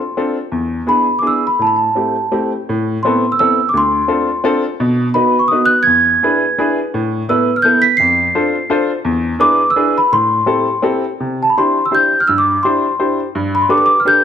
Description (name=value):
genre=musette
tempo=169 BPM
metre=3/4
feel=swing 54% on 8ths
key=A minor, C major from 11.2 s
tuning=A4 = 440 Hz
part: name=large celesta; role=melody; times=0.0-14.2 s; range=A5 to C7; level=-13 LUFS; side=right 1 dB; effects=none
part: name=clear upright piano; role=accompaniment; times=0.2-14.2 s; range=D2 to C5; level=-16 LUFS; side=left 1 dB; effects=none
room=moderate recital hall reverb, RT60 1.5 s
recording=close, detailed microphones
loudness=-12 LUFS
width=side -8 dB against mid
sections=0.0-2.7 A section; 2.7-11.2 A section; 11.2-14.2 B section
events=none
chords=0.0 F6; 0.5 E7; 1.6 Am7; 2.7 Amadd9; 3.7 Dm7; 4.8 B; 5.9 E7; 6.9 Asus2; 8.0 F6; 9.1 E7; 10.1 Am7; 11.2 Cadd9; 13.4 Gadd9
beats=0.17 | 0.52 0.88 1.23 | 1.59 1.95 2.31 | 2.67 3.04 3.39 | 3.74 4.09 4.45 | 4.80 5.15 5.50 | 5.86 6.22 6.58 | 6.93 7.29 7.65 | 8.00 8.35 8.70 | 9.06 9.41 9.76 | 10.12 10.48 10.84 | 11.21 11.56 11.92 | 12.28 12.64 13.00 | 13.35 13.71 14.06